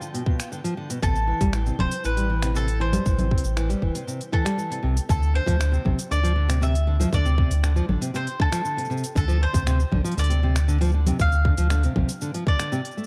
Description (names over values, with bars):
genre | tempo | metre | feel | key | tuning
folktronica | 118 BPM | 4/4 | straight | D dorian | A4 = 438 Hz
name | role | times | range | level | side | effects
bowl-back mandolin | melody | 0.0-13.1 s | F4 to F5 | -32 LUFS | equal | vintage 12-bit sampler grit, delay
nylon-string guitar | arpeggios | 0.0-13.1 s | B2 to A3 | -31 LUFS | equal | delay
organic electronic drum kit | drums | 0.0-13.1 s | congas, finger snaps, hi-hat, shaker | -33 LUFS | equal | none
twinkling granular texture | texture | 0.0-5.1 s | G5 | -50 LUFS | equal | none
electronic kick drum | drums | 0.3-12.6 s | none | -25 LUFS | equal | none
warm sub bass | bass | 1.0-12.0 s | E1 to D2 | -24 LUFS | equal | none
room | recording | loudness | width
digital ambience | dark, warm production | -23 LUFS | mono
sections
0.0-5.1 A section; 5.1-13.1 B section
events
none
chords
0.0 G7; 1.0 Am7; 5.1 Dm7